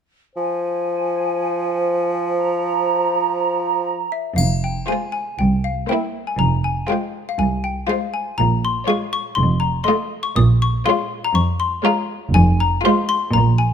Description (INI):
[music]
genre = cinematic, playful, whimsical film cue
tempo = 120 BPM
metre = 4/4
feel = straight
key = F minor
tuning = A4 = 439 Hz
[part]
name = large flute ensemble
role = second line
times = 0.4-4.1 s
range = Ab5 to Bb5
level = -23 LUFS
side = right 6 dB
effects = none
[part]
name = mellow clarinet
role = second line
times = 0.4-4.1 s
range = C5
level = -25 LUFS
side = left 2 dB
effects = none
[part]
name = clear bassoon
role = accompaniment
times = 0.4-4.1 s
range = F3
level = -22 LUFS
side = right 2 dB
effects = none
[part]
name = xylophone with rubber mallets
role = melody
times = 4.1-13.7 s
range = E5 to Eb6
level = -22 LUFS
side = left 6 dB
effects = none
[part]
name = warm chamber cello section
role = bass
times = 4.4-13.7 s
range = C2 to Bb2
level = -20 LUFS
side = right 1 dB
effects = none
[part]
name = warm chamber double bass section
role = bass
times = 4.4-13.7 s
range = F1 to C2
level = -19 LUFS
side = right 2 dB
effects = none
[part]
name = triangle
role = percussion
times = 4.4-5.3 s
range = none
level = -28 LUFS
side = left 3 dB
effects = none
[part]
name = warm symphonic violin section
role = melody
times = 4.9-13.2 s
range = C5 to Eb5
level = -30 LUFS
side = left 3 dB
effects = none
[part]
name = rich chamber violin section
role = second line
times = 4.9-13.2 s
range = E4 to F4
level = -24 LUFS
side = left 3 dB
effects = none
[part]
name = warm studio viola section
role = accompaniment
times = 4.9-13.2 s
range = Ab3 to Bb3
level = -23 LUFS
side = right 2 dB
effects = none
[sound]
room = light reverb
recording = close, detailed microphones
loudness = -17 LUFS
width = side -8 dB against mid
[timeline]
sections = 0.4-4.4 A section; 4.4-13.7 B section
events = none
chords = 0.4 Fm; 5.4 C7; 6.4 Fm; 8.4 Bbm7; 9.4 F7; 10.4 Bbm7; 12.4 Fm